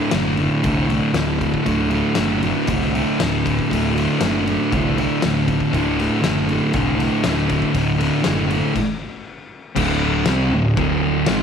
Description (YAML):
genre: garage rock duo or trio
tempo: 119 BPM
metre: 4/4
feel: straight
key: D mixolydian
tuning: A4 = 440 Hz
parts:
  - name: thick fuzz guitar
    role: riff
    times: 0.0-11.4 s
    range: D2 to C4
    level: -18 LUFS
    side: equal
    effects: distortion
  - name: growling picked electric bass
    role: bass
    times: 0.1-11.4 s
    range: D1 to C2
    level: -25 LUFS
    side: right 1 dB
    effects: overdrive
  - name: oversized low-tuned drum kit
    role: drums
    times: 0.1-11.4 s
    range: crash cymbal, kick drum, ride cymbal, snare drum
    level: -25 LUFS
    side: left 4 dB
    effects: none
room: light reverb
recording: 1960s-style stereo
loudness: -17 LUFS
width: side -7 dB against mid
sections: 0.0-9.8 A section; 9.8-11.4 B section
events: stop 8.8-9.8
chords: 0.0 D; 9.8 D5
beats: 0.14 0.65 1.16 | 1.67 2.18 2.69 3.19 | 3.70 4.21 4.72 5.22 | 5.73 6.24 6.74 7.25 | 7.75 8.26 8.76 9.27 | 9.77 10.27 10.78 11.28